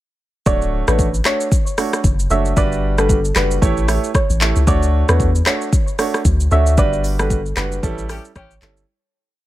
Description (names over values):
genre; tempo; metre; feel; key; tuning
afrobeats; 114 BPM; 4/4; swing 58% on 16ths; D major; A4 = 440 Hz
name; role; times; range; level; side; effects
soft round pluck; melody; 0.5-8.8 s; A4 to E5; -23 LUFS; left 1 dB; chorus, digital delay
warm grand piano; accompaniment; 0.5-8.8 s; G3 to C#5; -23 LUFS; right 5 dB; none
punchy sub bass; bass; 0.5-8.8 s; D1 to E2; -18 LUFS; equal; none
afro-pop drum kit; drums; 0.5-8.9 s; handclaps, hi-hat, kick drum, rim click, shaker; -18 LUFS; equal; none
clear horn section; second line; 8.1-8.5 s; E3 to G4; -40 LUFS; left 4 dB; none
room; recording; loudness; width
little or no reverb; none; -14 LUFS; side -15 dB against mid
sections
0.5-8.9 chorus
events
fade-out 6.8-8.9; band accent 6.8-8.9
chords
0.5 Dmaj7; 2.6 Gmaj7; 3.6 A7; 4.7 Dmaj7; 6.8 Gmaj7; 7.8 A7